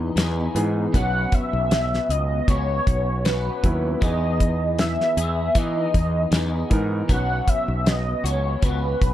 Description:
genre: indie pop, bedroom pop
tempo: 78 BPM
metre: 4/4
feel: swing 55% on 16ths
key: B major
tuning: A4 = 440 Hz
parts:
  - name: electric guitar through a small old amp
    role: accompaniment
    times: 0.0-9.1 s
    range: B2 to G#4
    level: -29 LUFS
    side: left 3 dB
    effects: ensemble chorus, vibrato effect, plate reverb
  - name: warm upright piano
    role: accompaniment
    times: 0.0-9.1 s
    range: E3 to B4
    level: -32 LUFS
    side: right 1 dB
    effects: plate reverb
  - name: fretless electric bass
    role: bass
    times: 0.0-9.1 s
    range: B1 to E3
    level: -24 LUFS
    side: equal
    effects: none
  - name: damped 70s drum kit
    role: drums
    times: 0.2-9.1 s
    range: hi-hat, kick drum, snare drum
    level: -21 LUFS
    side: equal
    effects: none
  - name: warm velvety synth lead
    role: melody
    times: 1.0-9.1 s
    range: B4 to F#5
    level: -25 LUFS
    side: equal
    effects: ensemble chorus, plate reverb
room: moderate studio reverb, RT60 0.6 s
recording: dark, warm production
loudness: -19 LUFS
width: side -12 dB against mid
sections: 0.0-9.1 A section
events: none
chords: 0.0 Emaj7; 0.9 Bsus2; 4.0 Emaj7; 7.1 Bsus2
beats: 0.17 | 0.94 1.71 2.48 3.25 | 4.02 4.79 5.56 6.33 | 7.09 7.86 8.63

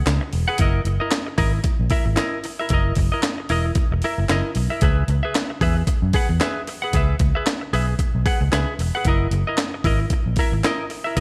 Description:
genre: funk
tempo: 114 BPM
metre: 4/4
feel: swing 56% on 16ths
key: unclear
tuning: A4 = 443 Hz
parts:
  - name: vintage muted fingered electric bass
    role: bass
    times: 0.0-11.2 s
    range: E1 to F#2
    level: -25 LUFS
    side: equal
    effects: none
  - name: semi-hollow electric guitar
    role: accompaniment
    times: 0.1-11.2 s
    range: E4 to F#5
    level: -27 LUFS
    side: equal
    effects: analog chorus
  - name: breakbeat sampler-style drum kit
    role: drums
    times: 0.1-11.2 s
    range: handclaps, hi-hat, kick drum, snare drum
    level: -25 LUFS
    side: equal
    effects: none
room: light reverb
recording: none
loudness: -21 LUFS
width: mono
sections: 0.0-11.2 A section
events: none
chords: 0.0 C#m7; 0.6 F#13; 4.8 C#m7; 9.1 F#13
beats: 0.07 | 0.60 1.13 1.66 2.19 | 2.71 3.24 3.77 4.30 | 4.82 5.35 5.88 6.41 | 6.94 7.46 7.99 8.52 | 9.05 9.58 10.11 10.64 | 11.16

